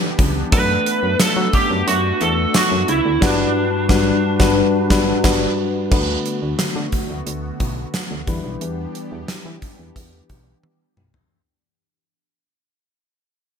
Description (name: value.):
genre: 1980s-style pop.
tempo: 89 BPM.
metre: 4/4.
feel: straight.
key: unclear.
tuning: A4 = 441 Hz.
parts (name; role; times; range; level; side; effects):
FM electric piano; accompaniment; 0.0-11.3 s; G2 to F#5; -22 LUFS; left 3 dB; chorus.
lush unison pad; sustained chords; 0.0-11.3 s; D3 to B4; -27 LUFS; left 1 dB; chorus, phaser.
solid FM bass; bass; 0.2-11.2 s; G1 to F#3; -24 LUFS; equal; none.
gated 80s drum kit; drums; 0.2-11.3 s; crash cymbal, hi-hat, kick drum, snare drum, tambourine, toms; -20 LUFS; equal; none.
lead guitar through a small cranked amp; melody; 0.5-5.2 s; D4 to B4; -20 LUFS; right 1 dB; overdrive.
room: moderate lush hall reverb, RT60 1.9 s, small room ambience.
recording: bright 1980s-style digital production.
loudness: -16 LUFS.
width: side -7 dB against mid.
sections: 0.0-5.9 A section; 5.9-11.3 B section.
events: band accent 3.2-5.9; fade-out 5.9-11.3; drum fill 10.6-11.3.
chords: 0.0 Em7; 0.5 Bm7/F#; 3.2 Gmaj7; 5.9 D6; 8.3 Em7.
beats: | 0.52 1.20 1.87 2.54 | 3.22 3.89 4.57 5.24 | 5.92 6.59 7.26 7.94 | 8.61 9.29 9.96 10.63.